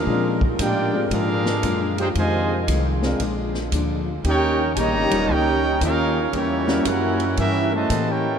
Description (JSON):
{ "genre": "jazz, big band swing", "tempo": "115 BPM", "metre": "4/4", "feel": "swing 66% on 8ths", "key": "unclear", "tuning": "A4 = 441 Hz", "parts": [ { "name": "mellow trumpet section", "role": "melody", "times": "0.0-8.4 s", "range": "Bb3 to Bb5", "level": "-24 LUFS", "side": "right 2 dB", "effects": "none" }, { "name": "clear trombone section", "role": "second line", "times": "0.0-8.4 s", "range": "C3 to Bb4", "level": "-25 LUFS", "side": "right 2 dB", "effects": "none" }, { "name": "warm saxophone section", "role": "sustained chords", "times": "0.0-8.4 s", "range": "Db3 to Bb4", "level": "-30 LUFS", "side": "equal", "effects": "none" }, { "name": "upright bass", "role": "bass", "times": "0.0-8.4 s", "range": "Eb1 to Bb2", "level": "-26 LUFS", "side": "equal", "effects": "none" }, { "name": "picked plugged-in steel-string acoustic guitar", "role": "accompaniment", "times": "0.1-8.3 s", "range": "F2 to G4", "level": "-27 LUFS", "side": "left 5 dB", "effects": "none" }, { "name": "warm concert grand piano", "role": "accompaniment", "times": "0.1-6.8 s", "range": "G3 to Bb4", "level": "-31 LUFS", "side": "left 1 dB", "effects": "none" }, { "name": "vintage drum kit", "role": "drums", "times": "0.4-8.1 s", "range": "hi-hat, kick drum, ride cymbal, snare drum", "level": "-30 LUFS", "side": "equal", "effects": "none" } ], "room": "wet cathedral reverb, RT60 5.7 s", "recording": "in a vast, echoing space", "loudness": "-18 LUFS", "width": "side -7 dB against mid", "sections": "0.0-8.4 A section", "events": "none", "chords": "0.1 Bb7; 2.2 Fm7; 3.2 Bb7; 4.2 Eb7; 6.3 Edim7" }